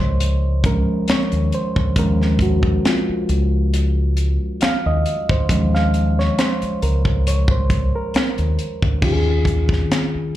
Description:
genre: R&B, neo-soul.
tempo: 68 BPM.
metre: 4/4.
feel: swing 54% on 16ths.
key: unclear.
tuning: A4 = 440 Hz.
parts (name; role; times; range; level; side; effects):
reed electric piano; accompaniment; 0.0-10.4 s; Eb3 to F5; -21 LUFS; equal; plate reverb, slapback echo.
deep dub fingered electric bass; bass; 0.0-10.2 s; Db2 to Eb2; -18 LUFS; equal; none.
tight funk drum kit; drums; 0.2-10.1 s; crash cymbal, hi-hat, kick drum, snare drum; -21 LUFS; equal; none.
room: light reverb.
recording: live gig heard through the venue's PA, club reverb.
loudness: -16 LUFS.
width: side -14 dB against mid.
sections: 0.0-9.0 A section; 9.0-10.4 B section.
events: reed electric piano solo 0.0-9.0.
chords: 0.0 Eb9sus4.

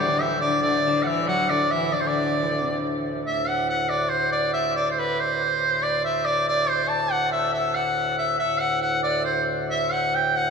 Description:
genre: medieval dance.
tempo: 93 BPM (dotted quarters).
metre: 6/8.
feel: straight.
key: D mixolydian.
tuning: A4 = 440 Hz.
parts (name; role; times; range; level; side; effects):
bright shawm; melody; 0.0-10.5 s; B4 to A5; -22 LUFS; equal; none.
clear viola da gamba; second line; 0.0-2.8 s; C3 to F#3; -28 LUFS; left 3 dB; none.
pedal harmonium; drone; 0.0-10.5 s; D2 to A2; -31 LUFS; equal; none.
room: wet cathedral reverb, RT60 5.1 s.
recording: minimal, uncompressed stereo recording.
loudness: -21 LUFS.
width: side -5 dB against mid.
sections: 0.0-3.2 A section; 3.2-10.5 B section.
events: none.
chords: none.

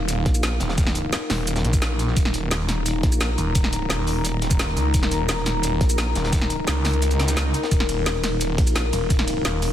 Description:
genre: dark technical drum and bass.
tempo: 173 BPM.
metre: 4/4.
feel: straight.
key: unclear.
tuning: A4 = 440 Hz.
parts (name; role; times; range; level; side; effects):
deep dark ambient pad; sustained chords; 0.0-9.7 s; Eb4 to Bb5; -27 LUFS; left 3 dB; chorus, built-in reverb, sidechain pumping.
snarling distorted saw bass; bass; 0.0-9.7 s; Eb1 to Db2; -24 LUFS; equal; distortion, overdrive.
crunchy breakbeat drum kit; drums; 0.1-9.7 s; hi-hat, snare drum; -36 LUFS; equal; none.
drum and bass drum kit; drums; 0.1-9.7 s; hi-hat, ride cymbal, shaker, snare drum; -26 LUFS; equal; overdrive.
vowel-sweep wobble bass; bass; 0.3-0.6, 3.0-3.4, 5.8-6.1, 8.6-8.9 s; Bb1; -23 LUFS; equal; chorus.
electronic kick drum; drums; 0.3-9.2 s; none; -21 LUFS; equal; overdrive.
swell; sound effects; 7.1-7.7 s; none; -35 LUFS; right 3 dB; none.
room: light reverb, digital ambience.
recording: dense, heavily limited modern master.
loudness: -19 LUFS.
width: side -11 dB against mid.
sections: 0.0-9.7 A section.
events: kick drops out 7.0-7.7; swell 7.1-7.7.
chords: 0.0 Eb5.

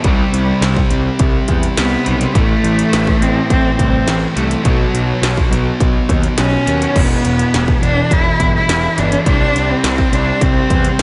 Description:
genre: quiet-loud alternative rock.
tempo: 104 BPM.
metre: 4/4.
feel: straight.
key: unclear.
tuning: A4 = 441 Hz.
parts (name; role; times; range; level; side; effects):
warm cello; melody; 0.0-11.0 s; F#3 to E4; -20 LUFS; equal; slapback echo, digital delay.
cranked stack guitar; riff; 0.0-11.0 s; E2 to C4; -25 LUFS; equal; overdrive, slapback echo.
thick fuzz guitar; riff; 0.0-11.0 s; E2 to C4; -23 LUFS; equal; distortion.
fuzz picked electric bass; bass; 0.0-11.0 s; E1 to E2; -21 LUFS; equal; overdrive.
industrial drum kit; drums; 0.0-11.0 s; crash cymbal, hi-hat, kick drum, snare drum; -19 LUFS; equal; none.
room: light reverb, digital ambience.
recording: nothing above 10.6 kHz.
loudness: -14 LUFS.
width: mono.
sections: 0.0-11.0 A section.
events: none.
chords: 0.0 C5; 2.3 Am; 4.6 B; 7.0 Em; 9.3 C5.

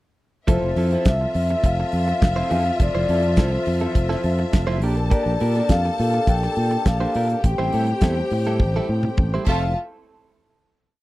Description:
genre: disco.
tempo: 104 BPM.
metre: 4/4.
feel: straight.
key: F major.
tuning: A4 = 440 Hz.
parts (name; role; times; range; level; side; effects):
vibraphone with soft mallets; melody; 0.5-9.7 s; C5 to G5; -25 LUFS; left 2 dB; none.
clear studio string section; second line; 0.5-9.7 s; F4 to A5; -30 LUFS; left 2 dB; none.
direct-recorded clean electric guitar; accompaniment; 0.5-9.7 s; F3 to C5; -28 LUFS; right 4 dB; spring reverb.
tonewheel organ; sustained chords; 0.5-9.7 s; F3 to A4; -30 LUFS; equal; slow rotary speaker.
fingered electric bass; bass; 0.5-9.7 s; F1 to Bb2; -22 LUFS; equal; none.
damped 70s drum kit; drums; 0.5-9.6 s; crash cymbal, hi-hat, kick drum, snare drum, toms; -18 LUFS; equal; none.
room: little or no reverb.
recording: dry, close 1970s-style studio recording.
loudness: -18 LUFS.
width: side -17 dB against mid.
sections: 0.5-9.8 verse; 9.8-11.0 final hit.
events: drum fill 8.6-9.8.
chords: 0.5 Fmaj7; 4.8 Bb6; 7.4 Am7; 9.5 Fmaj7; 9.8 N.C..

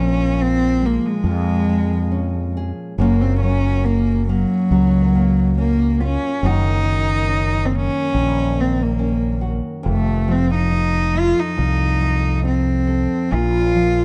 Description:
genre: acoustic folk-pop ballad.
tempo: 70 BPM.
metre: 4/4.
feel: straight.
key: Bb minor.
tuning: A4 = 440 Hz.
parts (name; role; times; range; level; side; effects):
warm cello; melody; 0.0-14.0 s; Gb3 to F4; -22 LUFS; equal; none.
nylon-string guitar; accompaniment; 0.0-14.0 s; F2 to A4; -26 LUFS; equal; none.
fretless electric bass; bass; 0.0-14.0 s; F1 to F2; -22 LUFS; equal; none.
room: little or no reverb.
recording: dark, warm production.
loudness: -18 LUFS.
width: mono.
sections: 0.0-14.0 A section.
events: none.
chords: 0.0 Bbm7; 3.0 Gbmaj7; 6.4 Ebm7/Gb; 9.9 F7; 13.3 Bb5.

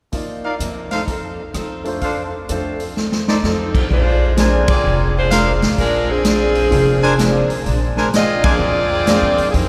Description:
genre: jazz, big band swing.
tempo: 128 BPM.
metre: 4/4.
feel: swing 66% on 8ths.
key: Bb mixolydian.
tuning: A4 = 440 Hz.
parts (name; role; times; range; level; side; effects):
clear baby grand piano; accompaniment; 0.1-9.4 s; F3 to D5; -29 LUFS; equal; none.
picked acoustic archtop guitar; accompaniment; 0.1-9.7 s; F2 to A4; -28 LUFS; equal; none.
vintage drum kit; drums; 0.1-9.7 s; crash cymbal, hi-hat, kick drum, ride cymbal, rim click, snare drum; -22 LUFS; equal; none.
clear trumpet section; stabs; 0.4-8.5 s; D4 to Ab5; -26 LUFS; equal; none.
upright bass; bass; 0.6-9.7 s; F1 to Ab2; -23 LUFS; equal; none.
warm saxophone section; melody; 3.4-9.7 s; F3 to Eb5; -21 LUFS; equal; none.
room: wet cathedral reverb, RT60 5.1 s.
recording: recorded in a church or concert hall.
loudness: -17 LUFS.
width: mono.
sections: 0.1-3.9 A section; 3.9-9.7 B section.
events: drum fill 3.0-3.4; band accent 4.6, 8.4.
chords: 0.1 Cm11; 1.1 F7; 2.0 Dm7; 3.0 F7; 3.9 Bb9.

